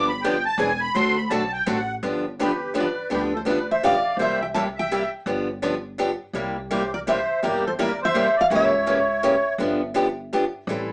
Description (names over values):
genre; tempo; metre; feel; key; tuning
acoustic string swing (jazz manouche); 167 BPM; 3/4; swing 62% on 8ths; G mixolydian; A4 = 441 Hz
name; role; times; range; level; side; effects
musette accordion; second line; 0.0-9.5 s; G4 to C6; -25 LUFS; equal; none
picked steel-string acoustic guitar; accompaniment; 0.0-10.9 s; C3 to A4; -23 LUFS; equal; none
upright bass; bass; 0.0-10.9 s; E1 to D2; -33 LUFS; equal; none
picked steel-string acoustic guitar; melody; 2.4-9.9 s; Bb4 to A5; -24 LUFS; equal; none
room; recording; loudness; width
wet studio ambience, RT60 0.4 s; band playing live in one room, small speaker sound; -20 LUFS; side -30 dB against mid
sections
0.0-2.0 A section; 2.0-10.9 B section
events
accordion solo 0.0-2.0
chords
0.0 G7; 0.6 E7b13; 1.0 D7; 2.0 G7; 4.2 C7; 5.3 G7; 6.3 C7; 8.5 C#dim7; 9.6 G7